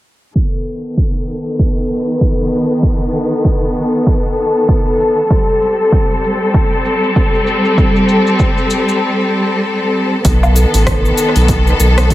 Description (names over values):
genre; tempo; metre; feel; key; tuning
organic downtempo; 97 BPM; 4/4; swing 59% on 16ths; B phrygian dominant; A4 = 439 Hz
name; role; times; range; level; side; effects
clear symphonic string section; sustained chords; 0.4-12.1 s; D#3 to A4; -14 LUFS; left 1 dB; sidechain pumping, low-pass filter
deep house drum kit; drums; 0.4-12.1 s; cabasa, hi-hat, rim click, woodblock; -20 LUFS; equal; overdrive, low-pass filter on perc, small room reverb, low-pass filter on hats, low-pass filter on snare, dub echo
electronic kick drum; drums; 0.4-12.1 s; none; -14 LUFS; equal; overdrive, small room reverb
round analog bass; bass; 10.2-12.1 s; A1 to B1; -11 LUFS; equal; sidechain pumping
room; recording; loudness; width
moderate spring reverb, RT60 1.7 s; echo-heavy mix, low-pass filter; -11 LUFS; side -15 dB against mid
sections
0.4-10.3 A section; 10.3-12.1 B section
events
filter sweep on drum 0.4-10.3; filter sweep on string section 0.4-10.3; filter sweep 0.4-10.3; break 9.0-10.3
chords
0.4 B7; 5.3 Am7; 10.3 B7